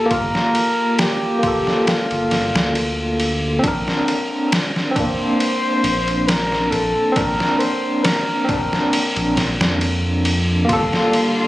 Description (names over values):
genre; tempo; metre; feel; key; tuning
trip hop; 68 BPM; 4/4; swing 54% on 16ths; unclear; A4 = 440 Hz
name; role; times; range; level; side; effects
trumpet with bucket mute; melody; 0.0-8.9 s; F4 to C5; -22 LUFS; equal; vintage 12-bit sampler grit, tape echo
overdriven tine electric piano; accompaniment; 0.0-11.5 s; Bb3 to Bb4; -20 LUFS; equal; tremolo, tape echo
round analog bass; bass; 0.1-10.9 s; F1 to F2; -23 LUFS; equal; none
trip hop sampler-style drum kit; drums; 0.1-11.4 s; kick drum, ride cymbal, snare drum; -22 LUFS; equal; none
rich symphonic string section; sustained chords; 10.7-11.5 s; D3 to F4; -22 LUFS; left 1 dB; none
room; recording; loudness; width
digital ambience; recorded on a phone in the room, club reverb, compression; -16 LUFS; side -16 dB against mid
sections
0.0-11.5 A section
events
none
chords
0.0 Gm7; 3.6 Bbadd9; 10.7 Gm7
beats
| 0.10 0.98 1.87 2.75 | 3.63 4.51 5.40 6.28 | 7.16 8.04 8.93 9.81 | 10.69